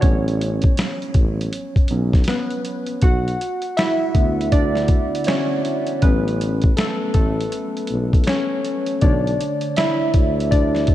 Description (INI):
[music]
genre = lo-fi hip hop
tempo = 80 BPM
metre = 4/4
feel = swing 60% on 16ths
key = unclear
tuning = A4 = 436 Hz
[part]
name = warm analog keys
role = accompaniment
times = 0.0-10.9 s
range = D3 to F#5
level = -21 LUFS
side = equal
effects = chorus, low-pass filter
[part]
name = mellow tuba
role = bass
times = 0.0-10.9 s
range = A1 to D2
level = -22 LUFS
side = equal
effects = none
[part]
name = boom bap sampler-style drum kit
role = drums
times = 0.0-10.9 s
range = hi-hat, kick drum, snare drum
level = -19 LUFS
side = equal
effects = none
[sound]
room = light reverb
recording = none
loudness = -17 LUFS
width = side -13 dB against mid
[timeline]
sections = 0.0-10.9 A section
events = synth keys solo 0.0-10.9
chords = 0.0 A69; 3.0 Bm7; 6.0 A69; 9.0 Bm7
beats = | 0.02 0.77 1.52 2.27 | 3.02 3.77 4.52 5.27 | 6.02 6.77 7.52 8.27 | 9.02 9.77 10.52